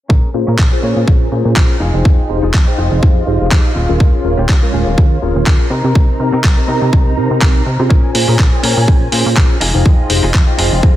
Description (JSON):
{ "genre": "filtered disco house", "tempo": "123 BPM", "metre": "4/4", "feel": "swing 55% on 16ths", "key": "Bb dorian", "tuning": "A4 = 441 Hz", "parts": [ { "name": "dark studio violin section", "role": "sustained chords", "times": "0.1-11.0 s", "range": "Db4 to Bb5", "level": "-24 LUFS", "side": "equal", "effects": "sidechain pumping, low-pass filter" }, { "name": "direct-recorded clean electric guitar", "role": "riff", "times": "0.1-10.9 s", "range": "C4 to G5", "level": "-24 LUFS", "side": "left 1 dB", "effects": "sidechain pumping, low-pass filter" }, { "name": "plucky analog bass", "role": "bass", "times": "0.1-11.0 s", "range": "Eb1 to C3", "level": "-16 LUFS", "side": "equal", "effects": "tube saturation, sidechain pumping, low-pass filter" }, { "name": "electronic kick drum", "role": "drums", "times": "0.1-10.9 s", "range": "none", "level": "-11 LUFS", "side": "equal", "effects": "studio reverb" }, { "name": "mellow tine electric piano", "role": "accompaniment", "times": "0.3-11.0 s", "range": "Ab3 to G5", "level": "-19 LUFS", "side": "equal", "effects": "medium stereo tremolo, phaser, sidechain pumping, low-pass filter" }, { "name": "dusty soul sampler-style drum kit", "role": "drums", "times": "0.6-10.7 s", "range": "handclaps, hi-hat", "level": "-19 LUFS", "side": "equal", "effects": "studio reverb, sidechain pumping on hats" } ], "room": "little or no reverb", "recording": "dense, heavily limited modern master", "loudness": "-10 LUFS", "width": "side -13 dB against mid", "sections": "0.1-11.0 A section", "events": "filter sweep 0.1-11.0; clean electric guitar fill 2.5-4.0", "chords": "0.1 Bbm7; 1.8 Fm7; 3.8 Eb9sus4; 5.7 Cm7; 7.9 Bbm7; 9.6 Fm7" }